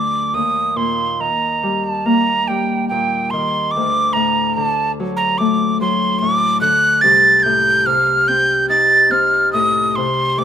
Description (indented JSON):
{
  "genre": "celtic folk",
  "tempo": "72 BPM",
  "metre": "4/4",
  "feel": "rubato",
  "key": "unclear",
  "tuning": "A4 = 440 Hz",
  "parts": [
    { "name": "breathy mid whistle", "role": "melody", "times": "0.0-10.4 s", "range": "G5 to A6", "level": "-14 LUFS", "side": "right 2 dB", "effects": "none" },
    { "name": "Celtic harp", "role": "accompaniment", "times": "0.0-10.4 s", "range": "C2 to Eb4", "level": "-20 LUFS", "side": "left 3 dB", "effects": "none" }
  ],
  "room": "small room ambience",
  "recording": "rough home demo mix",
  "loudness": "-13 LUFS",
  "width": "side -9 dB against mid",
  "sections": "0.0-10.4 A section",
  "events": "none",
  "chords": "0.3 Eb; 3.7 D; 7.0 Adim/C"
}